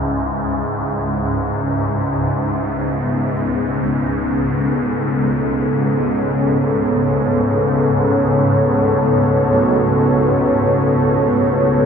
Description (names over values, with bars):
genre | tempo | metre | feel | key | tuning
dark ambient drone | free time | none | none | unclear | A4 = 439 Hz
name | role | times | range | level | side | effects
dark analog pad | sustained chords | 0.0-11.9 s | C#3 to E5 | -16 LUFS | equal | chorus
carillon bells | arpeggios | 0.0-11.9 s | F#3 to C#4 | -28 LUFS | right 1 dB | none
swarming drone | drone | 0.0-11.9 s | C#2 to G#2 | -19 LUFS | equal | built-in reverb, phaser
room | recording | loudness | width
wet huge ambient reverb, RT60 7.8 s | dreamy mix soaked in reverb | -15 LUFS | side -6 dB against mid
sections
0.0-11.9 A section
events
none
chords
0.0 C#m; 1.5 Aadd9/C#